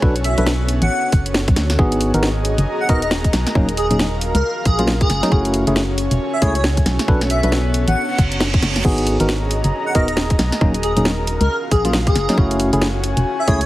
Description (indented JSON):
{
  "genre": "UK garage, two-step garage",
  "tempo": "136 BPM",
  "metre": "4/4",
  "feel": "swing 60% on 16ths",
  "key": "G# dorian",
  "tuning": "A4 = 440 Hz",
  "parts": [
    { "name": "ethereal airy pad", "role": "sustained chords", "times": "0.0-13.7 s", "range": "B3 to A#4", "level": "-29 LUFS", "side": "left 1 dB", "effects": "ensemble chorus, built-in reverb, tremolo, sidechain pumping" },
    { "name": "bright tine electric piano", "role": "stabs", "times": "0.0-13.6 s", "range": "F#3 to B4", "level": "-21 LUFS", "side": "equal", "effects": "digital delay" },
    { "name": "organ-like FM bass", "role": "bass", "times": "0.0-13.7 s", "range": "D#1 to D2", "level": "-20 LUFS", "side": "equal", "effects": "none" },
    { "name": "electronic kick drum", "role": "drums", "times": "0.0-13.6 s", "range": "none", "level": "-16 LUFS", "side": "equal", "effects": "none" },
    { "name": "airy breathy pad", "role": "texture", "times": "0.0-13.7 s", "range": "B3 to A#5", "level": "-26 LUFS", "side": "equal", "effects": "chorus, sidechain pumping" },
    { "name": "airy dreamy lead", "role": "melody", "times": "0.2-13.7 s", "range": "G#4 to F#5", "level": "-23 LUFS", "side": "equal", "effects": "chorus, digital delay" },
    { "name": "garage drum kit", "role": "drums", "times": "0.2-13.7 s", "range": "crash cymbal, hi-hat, snare drum", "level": "-22 LUFS", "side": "equal", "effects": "none" },
    { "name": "reverse cymbal", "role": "sound effects", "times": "8.1-8.8 s", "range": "none", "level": "-25 LUFS", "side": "right 4 dB", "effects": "none" }
  ],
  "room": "light reverb",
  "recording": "heavily compressed radio sound, multiband compression, vinyl crackle",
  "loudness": "-15 LUFS",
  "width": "side -16 dB against mid",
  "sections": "0.0-13.7 A section",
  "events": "reverse cymbal 8.1-8.8",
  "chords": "0.0 Bm7; 1.8 G#m7; 3.6 D#m7; 5.3 F#m7; 6.9 Bm7; 8.8 G#m7; 10.6 D#m7; 12.4 F#m7"
}